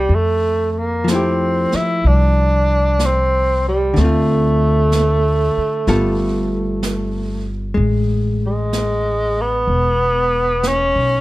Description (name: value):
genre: jazz ballad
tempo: 63 BPM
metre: 4/4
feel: swing 67% on 8ths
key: F major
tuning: A4 = 440 Hz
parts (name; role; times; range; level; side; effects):
- breathy tenor saxophone; melody; 0.0-11.2 s; G3 to E4; -18 LUFS; right 1 dB; none
- hollow-body jazz guitar; accompaniment; 0.0-11.2 s; D3 to A4; -21 LUFS; left 1 dB; none
- upright bass; bass; 0.0-11.2 s; E1 to F2; -19 LUFS; equal; none
- jazz brush drum kit; drums; 0.1-11.2 s; brushed snare drum, hi-hat, snare drum; -28 LUFS; right 3 dB; none
room: light reverb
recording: none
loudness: -15 LUFS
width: side -17 dB against mid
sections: 0.1-11.2 A section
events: none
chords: 0.1 Fmaj9; 4.0 Dm7; 5.9 G9; 7.8 Asus2